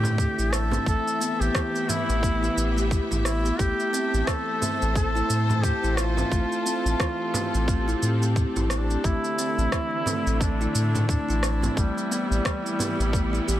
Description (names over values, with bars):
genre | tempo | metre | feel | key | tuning
organic downtempo | 88 BPM | 4/4 | swing 58% on 16ths | A minor | A4 = 439 Hz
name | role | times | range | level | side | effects
clear duduk | melody | 0.0-13.6 s | G3 to A4 | -28 LUFS | equal | digital delay
rich studio string section | sustained chords | 0.0-13.6 s | D3 to E5 | -32 LUFS | left 1 dB | sidechain pumping
kalimba | arpeggios | 0.0-13.6 s | E3 to G4 | -30 LUFS | left 1 dB | digital delay
warm sub bass | bass | 0.0-13.6 s | A1 to A2 | -25 LUFS | equal | sidechain pumping
electronic shaker and rim click | drums | 0.0-13.6 s | none | -31 LUFS | right 1 dB | soft clipping on snare
frame drum | percussion | 0.0-13.0 s | none | -33 LUFS | right 2 dB | none
electronic kick drum | drums | 0.2-13.3 s | none | -26 LUFS | equal | none
room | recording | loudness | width
light reverb, small room reverb | dense, heavily limited modern master | -22 LUFS | side -13 dB against mid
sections
0.0-13.6 A section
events
none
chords
0.0 D5/A; 0.9 Em/A; 3.6 Am7; 9.0 D5/A; 11.8 Em/A